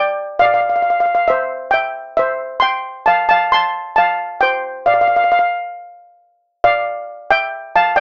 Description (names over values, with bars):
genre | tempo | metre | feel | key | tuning
calypso | 135 BPM | 4/4 | straight | F major | A4 = 439 Hz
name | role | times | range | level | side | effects
steel pan | solo | 0.0-8.0 s | C5 to C6 | -13 LUFS | equal | none
room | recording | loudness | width
little or no reverb | cassette tape, small speaker sound | -13 LUFS | side -29 dB against mid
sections
0.0-8.0 A section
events
none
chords
0.0 N.C.; 1.3 C; 3.1 F; 4.9 N.C.; 6.6 G5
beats
0.40 0.85 | 1.29 1.74 2.18 2.63 | 3.08 3.52 3.97 4.41 | 4.86 5.30 5.75 6.19 | 6.64 7.08 7.53 7.97